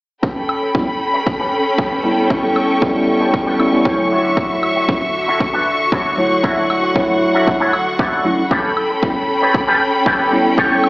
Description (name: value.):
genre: nu-disco, nu disco.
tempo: 116 BPM.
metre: 4/4.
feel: straight.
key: A mixolydian.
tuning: A4 = 440 Hz.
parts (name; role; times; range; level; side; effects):
rich studio string section; sustained chords; 0.2-10.9 s; D3 to C#6; -17 LUFS; equal; sidechain pumping.
electric guitar with an envelope filter; riff; 0.2-10.8 s; C#4 to E5; -20 LUFS; equal; ensemble chorus, low-pass filter, tape echo.
electronic kick drum; drums; 0.2-10.7 s; none; -19 LUFS; equal; overdrive.
woodblock; drums; 0.5-10.9 s; none; -23 LUFS; left 1 dB; overdrive.
bell-like tine electric piano; accompaniment; 0.7-10.9 s; F#3 to C#5; -18 LUFS; equal; fast stereo tremolo, sidechain pumping, low-pass filter, tape echo.
room: moderate echo chamber reverb, RT60 1.6 s, digital ambience.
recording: played on a big sound system in a bare room, large studio reverb, AM radio sound.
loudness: -13 LUFS.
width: side -22 dB against mid.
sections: 0.2-10.9 A section.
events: filter sweep on clean electric guitar 0.2-10.9; filter sweep on tine electric piano 0.2-10.9.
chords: 0.2 A9; 4.1 Dmaj9; 8.5 A9.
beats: | 0.23 0.75 1.27 1.78 | 2.30 2.82 3.34 3.85 | 4.37 4.89 5.41 5.92 | 6.44 6.96 7.47 7.99 | 8.51 9.03 9.54 10.06 | 10.58.